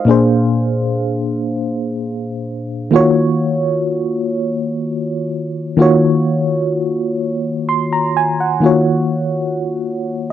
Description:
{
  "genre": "R&B",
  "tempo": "42 BPM (dotted quarters)",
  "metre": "6/8",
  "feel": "straight",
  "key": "Eb dorian",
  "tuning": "A4 = 440 Hz",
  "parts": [
    { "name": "FM electric piano with auto-pan", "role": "solo", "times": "0.0-10.3 s", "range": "Bb2 to C6", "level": "-14 LUFS", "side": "equal", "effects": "none" }
  ],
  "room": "light reverb",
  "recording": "dry, close 1970s-style studio recording",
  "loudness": "-15 LUFS",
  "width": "side -11 dB against mid",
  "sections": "0.0-8.6 A section; 8.6-10.3 B section",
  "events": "none",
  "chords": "0.1 Bb9; 2.9 Ebm9"
}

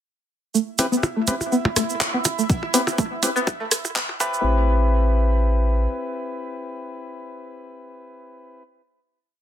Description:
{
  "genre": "minimal techno",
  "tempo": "123 BPM",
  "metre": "4/4",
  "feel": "swing 54% on 16ths",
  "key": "A minor",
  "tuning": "A4 = 444 Hz",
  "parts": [
    { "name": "string-like resonator pluck", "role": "riff", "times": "0.5-4.7 s", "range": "A3 to B3", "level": "-25 LUFS", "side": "right 1 dB", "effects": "chorus, sidechain pumping, dub echo" },
    { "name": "tube shaker", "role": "percussion", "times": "0.5-4.4 s", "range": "none", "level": "-28 LUFS", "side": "right 6 dB", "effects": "none" },
    { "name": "bubbling stepped-filter texture", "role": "texture", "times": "0.5-4.5 s", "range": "E4 to E5", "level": "-33 LUFS", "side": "right 4 dB", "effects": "chorus, built-in reverb, sidechain pumping" },
    { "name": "percussive organ stab", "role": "stabs", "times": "0.8-8.6 s", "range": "C4 to B4", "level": "-26 LUFS", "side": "left 2 dB", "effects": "chorus, tape echo" },
    { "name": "hollow knocking FM bass", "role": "bass", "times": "0.8-5.9 s", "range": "A1", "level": "-20 LUFS", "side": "equal", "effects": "sidechain pumping, high-pass filter" },
    { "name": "house drum kit", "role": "drums", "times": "0.8-4.1 s", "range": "handclaps, hi-hat", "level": "-22 LUFS", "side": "right 2 dB", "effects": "soft clipping on snare" },
    { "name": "electronic percussion blips and rim click", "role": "percussion", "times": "0.8-4.2 s", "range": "none", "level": "-26 LUFS", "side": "left 1 dB", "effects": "overdrive, tape echo" },
    { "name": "electronic kick drum", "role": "drums", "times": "2.5-4.3 s", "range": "none", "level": "-23 LUFS", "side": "equal", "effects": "none" }
  ],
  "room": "light reverb",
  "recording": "dense, heavily limited modern master, high-pass filter",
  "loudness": "-19 LUFS",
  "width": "side -10 dB against mid",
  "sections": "0.5-4.4 build; 4.4-8.3 final hit",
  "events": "build-up 0.5-4.4; filter sweep on synth pluck 0.5-4.4; filter sweep 0.5-4.4",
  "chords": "0.5 Am7"
}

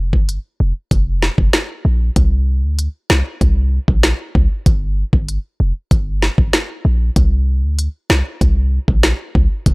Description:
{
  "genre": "dancehall",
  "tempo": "96 BPM",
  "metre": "4/4",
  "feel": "straight",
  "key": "unclear",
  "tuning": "A4 = 441 Hz",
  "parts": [
    { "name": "warm 808-style bass", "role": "bass", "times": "0.0-9.7 s", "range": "F1 to D2", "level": "-15 LUFS", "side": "equal", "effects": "none" },
    { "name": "island pop drum kit", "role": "drums", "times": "0.1-9.7 s", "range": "hi-hat, kick drum, snare drum", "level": "-15 LUFS", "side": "equal", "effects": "none" }
  ],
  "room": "little or no reverb",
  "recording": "dry, gritty hardware recording",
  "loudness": "-14 LUFS",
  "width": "side -28 dB against mid",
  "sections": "0.0-9.7 A section",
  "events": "none",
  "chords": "none"
}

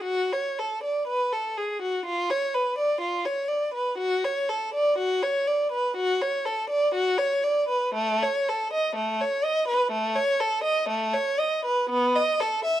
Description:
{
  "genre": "classical, baroque-style suite movement for unaccompanied violin",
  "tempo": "61 BPM",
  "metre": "4/4",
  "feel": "rubato",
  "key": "unclear",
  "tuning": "A4 = 440 Hz",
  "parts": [
    { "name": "warm violin", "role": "solo", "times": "0.0-12.8 s", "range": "A3 to E5", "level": "-23 LUFS", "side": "equal", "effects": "none" }
  ],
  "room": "light reverb",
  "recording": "dark, warm production",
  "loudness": "-23 LUFS",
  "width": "side -12 dB against mid",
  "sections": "0.0-12.8 A section",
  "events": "none",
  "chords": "none"
}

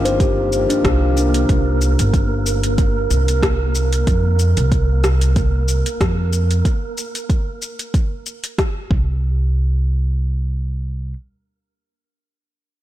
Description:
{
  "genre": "organic downtempo",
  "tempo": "93 BPM",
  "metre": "4/4",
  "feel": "swing 55% on 16ths",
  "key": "unclear",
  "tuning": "A4 = 440 Hz",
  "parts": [
    { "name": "pedal harmonium", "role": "accompaniment", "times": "0.0-1.5 s", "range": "Eb3 to G4", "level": "-27 LUFS", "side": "left 4 dB", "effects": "sidechain pumping, digital delay" },
    { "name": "kalimba", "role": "arpeggios", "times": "0.0-1.5 s", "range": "D4 to C5", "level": "-22 LUFS", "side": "left 2 dB", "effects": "digital delay" },
    { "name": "upright bass", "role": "bass", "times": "0.0-11.1 s", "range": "G1 to F2", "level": "-17 LUFS", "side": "equal", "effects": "sidechain pumping" },
    { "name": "wind-like tuned noise texture", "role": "texture", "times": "0.1-6.7 s", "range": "Bb3 to Bb4", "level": "-25 LUFS", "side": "right 3 dB", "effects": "built-in reverb" },
    { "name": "deep house drum kit", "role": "drums", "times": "0.1-8.7 s", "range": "hi-hat, rim click, shaker", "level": "-24 LUFS", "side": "left 1 dB", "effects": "overdrive, small room reverb" },
    { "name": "electronic kick drum", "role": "drums", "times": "0.2-9.0 s", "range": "none", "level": "-18 LUFS", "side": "equal", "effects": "overdrive, small room reverb" }
  ],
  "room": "light reverb",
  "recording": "blown-out, overdriven recording, overdrive",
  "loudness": "-16 LUFS",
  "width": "side -14 dB against mid",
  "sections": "0.0-9.2 A section; 9.2-11.8 B section",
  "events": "filter sweep on upright bass 0.0-6.7",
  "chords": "0.0 Cm; 4.1 F5; 8.9 N.C."
}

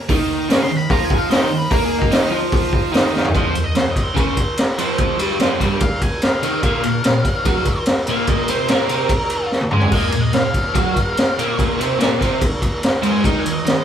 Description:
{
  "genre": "garage rock duo or trio",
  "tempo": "146 BPM",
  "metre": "4/4",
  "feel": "straight",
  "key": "F minor",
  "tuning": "A4 = 440 Hz",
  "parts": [
    { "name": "combo organ", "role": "sustained chords", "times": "0.0-3.3, 9.9-13.8 s", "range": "Bb3 to Bb4", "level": "-33 LUFS", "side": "equal", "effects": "none" },
    { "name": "biting overdriven guitar", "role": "riff", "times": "0.1-13.8 s", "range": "F2 to Bb4", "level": "-20 LUFS", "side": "right 1 dB", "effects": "none" },
    { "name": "raw garage drum kit", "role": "drums", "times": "0.1-13.8 s", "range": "crash cymbal, hi-hat, kick drum, ride cymbal, snare drum, toms", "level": "-18 LUFS", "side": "equal", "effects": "none" },
    { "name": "octave-fuzz lead guitar", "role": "melody", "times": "0.6-13.8 s", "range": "Eb4 to C6", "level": "-25 LUFS", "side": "left 1 dB", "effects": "distortion" }
  ],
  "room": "moderate large studio reverb, RT60 0.9 s",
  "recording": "band playing live in one room",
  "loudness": "-15 LUFS",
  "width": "side -9 dB against mid",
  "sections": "0.0-3.3 A section; 3.3-13.8 B section",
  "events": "lead electric guitar solo 0.0-3.3; drum fill 3.1, 9.5-9.9",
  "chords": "0.1 Eb5; 3.3 F5; 6.6 Bb5; 13.2 Eb5"
}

